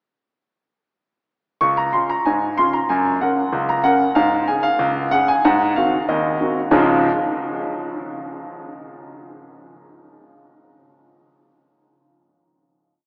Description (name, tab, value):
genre	ragtime piano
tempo	94 BPM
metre	2/4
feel	straight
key	Db major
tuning	A4 = 440 Hz
part	clear grand piano	solo	1.6-7.1 s	Db2 to Db6	-19 LUFS	equal	none
room	wet cathedral reverb, RT60 6.5 s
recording	in a vast, echoing space, small speaker sound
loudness	-19 LUFS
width	mono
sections	1.6-6.7 A section; 6.7-8.0 final chord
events	none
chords	1.6 Db; 2.9 Gb; 4.2 Db5/Ab; 5.4 Ab7; 6.7 Db